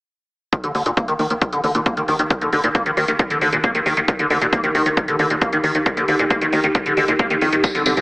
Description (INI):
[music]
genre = uplifting trance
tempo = 135 BPM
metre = 4/4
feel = straight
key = unclear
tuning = A4 = 439 Hz
[part]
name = filtered supersaw swell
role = sustained chords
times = 0.5-8.0 s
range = C3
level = -24 LUFS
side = equal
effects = sidechain pumping, low-pass filter
[part]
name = liquid acid bass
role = arpeggios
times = 0.5-8.0 s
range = Bb2 to Bb3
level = -18 LUFS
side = equal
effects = lush chorus, sidechain pumping, digital delay
[part]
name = electronic hi-hat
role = drums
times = 0.5-8.0 s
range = none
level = -33 LUFS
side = equal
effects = none
[part]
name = electronic kick drum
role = drums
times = 0.5-7.7 s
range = none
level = -20 LUFS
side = equal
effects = none
[part]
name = plucky analog bass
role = bass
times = 0.6-8.0 s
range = Eb1 to F2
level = -25 LUFS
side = equal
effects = sidechain pumping
[part]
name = tambourine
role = percussion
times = 7.6-8.0 s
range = none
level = -23 LUFS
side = equal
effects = none
[sound]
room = wet digital room reverb, RT60 1.1 s, digital ambience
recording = heavily compressed radio sound, AM radio sound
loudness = -16 LUFS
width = side -24 dB against mid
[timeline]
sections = 0.5-8.0 A section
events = filter sweep on acid bass 0.5-8.0; filter sweep on supersaw synth 0.5-8.0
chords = 0.5 Eb